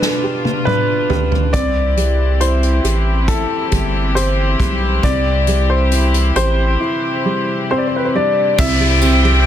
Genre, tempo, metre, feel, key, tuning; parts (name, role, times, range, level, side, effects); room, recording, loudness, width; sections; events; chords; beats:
pop ballad; 68 BPM; 4/4; straight; C major; A4 = 441 Hz
clear baby grand piano; melody; 0.0-9.5 s; C4 to E5; -19 LUFS; left 1 dB; ping-pong delay
dark upright piano; accompaniment; 0.0-9.5 s; C3 to G4; -22 LUFS; right 2 dB
warm studio string section; sustained chords; 0.0-9.5 s; B2 to G5; -22 LUFS; left 2 dB
unplugged drum kit; drums; 0.0-9.5 s; crash cymbal, hi-hat, kick drum, ride cymbal, snare drum, toms; -20 LUFS; equal
saturated sub bass; bass; 1.5-9.5 s; G1 to C2; -16 LUFS; equal
tambourine; percussion; 8.6-9.2 s; -31 LUFS; left 7 dB
downlifter; sound effects; 8.6-9.5 s; -21 LUFS; right 1 dB
light reverb, small room ambience; dense, heavily limited modern master; -13 LUFS; side -10 dB against mid
0.0-8.6 A section
drum fill 0.0-1.5; break 6.8-8.6
0.0 G; 1.5 C
0.66 | 1.53 2.40 3.28 4.16 | 5.03 5.92 6.80 7.70 | 8.59